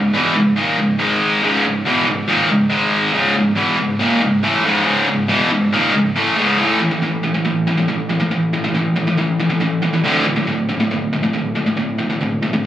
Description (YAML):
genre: metal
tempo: 139 BPM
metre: 4/4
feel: straight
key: unclear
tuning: A4 = 440 Hz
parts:
  - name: distorted electric guitar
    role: solo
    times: 0.0-12.6 s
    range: C#2 to A3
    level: -14 LUFS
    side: equal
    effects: overdrive, digital delay
room: digital ambience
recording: recorded on a phone in the room, club reverb, nothing above 10.9 kHz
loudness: -14 LUFS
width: side -12 dB against mid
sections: 0.0-6.6 A section; 6.6-12.7 B section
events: none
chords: 0.0 C#m; 1.0 G#5; 1.4 C#m; 2.7 G#5; 3.1 C#m; 6.6 A5; 10.0 D5